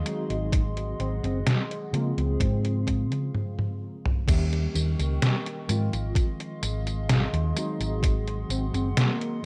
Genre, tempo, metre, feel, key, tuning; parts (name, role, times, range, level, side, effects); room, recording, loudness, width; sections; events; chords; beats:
vaporwave; 64 BPM; 4/4; straight; Ab major; A4 = 442 Hz
mellow tine electric piano; accompaniment; 0.0-9.5 s; Db3 to G4; -37 LUFS; equal; ensemble chorus, analog delay
warbly tape-like pad; sustained chords; 0.0-9.5 s; Ab4 to C6; -40 LUFS; equal; chorus, built-in reverb, phaser
warm velvety synth lead; melody; 0.1-9.4 s; Bb3 to F4; -37 LUFS; equal; chorus, tape echo
detuned 8-bit digital drum machine; drums; 0.1-9.4 s; crash cymbal, hi-hat, snare drum, tambourine, toms; -29 LUFS; equal; small room ambience
hollow-body short-scale fingered electric bass; bass; 0.3-8.9 s; Gb1 to Db3; -30 LUFS; equal
electronic kick drum; drums; 0.5-8.2 s; -27 LUFS; equal; small room ambience
digital ambience; rough home demo mix; -27 LUFS; mono
0.0-4.3 A section; 4.3-9.5 B section
drum fill 3.3-4.3; stop 3.3-4.3
0.1 Ab7; 1.9 Dbmaj7; 4.3 Eb7; 5.7 Ab6; 7.6 Ab7
| 0.53 1.47 2.40 3.34 | 4.28 5.22 6.15 7.09 | 8.03 8.97